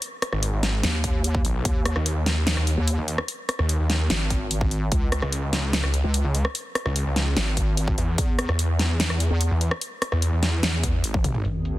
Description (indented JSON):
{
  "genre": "heavy wobble dubstep",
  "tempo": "147 BPM",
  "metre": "4/4",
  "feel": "half-time",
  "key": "unclear",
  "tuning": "A4 = 440 Hz",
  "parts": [
    { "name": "big-room dance drum kit", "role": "drums", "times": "0.0-11.7 s", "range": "hi-hat, rim click, snare drum, toms", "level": "-26 LUFS", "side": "equal", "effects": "soft clipping on snare, low-pass filter on snare, low-pass filter on hats, low-pass filter on toms" },
    { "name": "snarling distorted saw bass", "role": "bass", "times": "0.3-11.4 s", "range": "G#1 to E2", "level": "-23 LUFS", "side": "equal", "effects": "distortion, overdrive" },
    { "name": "wobble bass", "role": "bass", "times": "0.8-11.8 s", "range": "G#1 to E2", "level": "-24 LUFS", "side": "equal", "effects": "chorus, overdrive" },
    { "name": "electronic kick drum", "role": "drums", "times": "1.0-1.7, 4.3-5.0, 7.6-8.3, 10.8-11.3 s", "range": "none", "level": "-25 LUFS", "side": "equal", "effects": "none" },
    { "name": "evolving wavetable pad", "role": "sustained chords", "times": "11.5-11.8 s", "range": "B2 to G#4", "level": "-40 LUFS", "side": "right 3 dB", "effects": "phaser, built-in reverb, sidechain pumping" },
    { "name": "sub drop", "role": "sound effects", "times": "11.4-11.8 s", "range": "none", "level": "-29 LUFS", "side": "equal", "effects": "none" }
  ],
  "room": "little or no reverb",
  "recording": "dense, heavily limited modern master",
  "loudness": "-21 LUFS",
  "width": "side -16 dB against mid",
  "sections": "0.0-11.4 A section",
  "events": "drop 0.0-11.4; drum fill 11.1-11.4; impact 11.4-11.8",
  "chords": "0.0 G#m; 1.7 D#sus4; 4.9 C#5; 8.2 E"
}